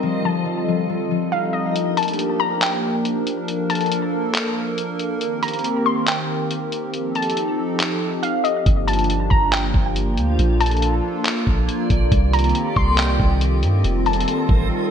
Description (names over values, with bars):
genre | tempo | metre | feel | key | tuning
hip hop, atmospheric cloud-rap | 139 BPM | 4/4 | half-time | G minor | A4 = 439 Hz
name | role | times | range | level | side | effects
hollow soft pad | sustained chords | 0.0-14.9 s | Eb3 to Eb5 | -23 LUFS | equal | chorus, sidechain pumping, low-pass filter
concert harp | arpeggios | 0.0-4.0 s | F3 to Eb4 | -25 LUFS | left 7 dB | low-pass filter, digital delay
backwards swelling texture | texture | 0.0-1.7, 9.9-14.9 s | A3 to F5 | -30 LUFS | left 1 dB | built-in reverb, wide subtle chorus
warbly dusty pluck | melody | 0.3-14.7 s | Eb5 to C6 | -24 LUFS | left 2 dB | chorus, low-pass filter, digital delay
lo-fi sampler-style drum kit | drums | 1.8-14.6 s | handclaps, hi-hat, kick drum | -22 LUFS | equal | gated reverb
soft 808-style bass | bass | 8.7-14.7 s | F1 to G2 | -20 LUFS | equal | none
room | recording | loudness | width
light reverb | bright 1980s-style digital production | -18 LUFS | side -8 dB against mid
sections
0.0-1.8 A section; 1.8-14.9 B section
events
filter sweep 0.0-1.8; kick muted 1.8-8.7; break 14.7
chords
0.0 F9; 1.8 Gm7; 3.5 Bbmaj7; 5.2 Cm7; 6.9 F9; 8.7 Gm7; 10.4 Bbmaj7; 12.1 Cm7; 13.8 F9